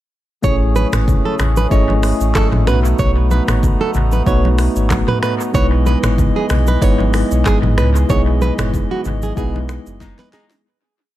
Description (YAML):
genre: afrobeats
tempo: 94 BPM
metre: 4/4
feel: swing 55% on 16ths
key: E major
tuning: A4 = 441 Hz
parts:
  - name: tine electric piano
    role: accompaniment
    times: 0.4-10.7 s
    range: G#3 to D#5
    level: -20 LUFS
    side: left 1 dB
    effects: medium stereo tremolo
  - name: pedal harmonium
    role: sustained chords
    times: 0.4-10.6 s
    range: E3 to D#5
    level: -27 LUFS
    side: left 1 dB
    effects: stereo widening
  - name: flamenco guitar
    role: riff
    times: 0.4-10.4 s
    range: F#4 to C#5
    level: -22 LUFS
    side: right 6 dB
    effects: dub echo
  - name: sub bass with octave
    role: bass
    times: 0.4-10.1 s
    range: F#1 to C#2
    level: -16 LUFS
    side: equal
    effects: none
  - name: afro-pop drum kit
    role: drums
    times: 0.4-10.6 s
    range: finger snaps, handclaps, hi-hat, kick drum, rim click, shaker, snare drum, toms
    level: -19 LUFS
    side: equal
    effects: dub echo
  - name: congas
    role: percussion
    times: 0.4-10.3 s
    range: none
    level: -26 LUFS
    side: left 3 dB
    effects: dub echo
  - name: clear horn section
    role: second line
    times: 10.0-10.5 s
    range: B2 to D#4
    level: -52 LUFS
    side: left 3 dB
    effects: none
room: studio reverb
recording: echo-heavy mix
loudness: -13 LUFS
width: side -14 dB against mid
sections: 0.4-10.6 chorus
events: fade-out 8.1-10.6; band accent 8.1-10.6; drum fill 10.0-10.6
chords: 0.4 Amaj7; 2.7 B7; 5.5 Emaj7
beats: | 0.44 1.07 1.71 2.35 | 2.99 3.63 4.27 4.91 | 5.54 6.18 6.82 7.46 | 8.10 8.73 9.37 10.01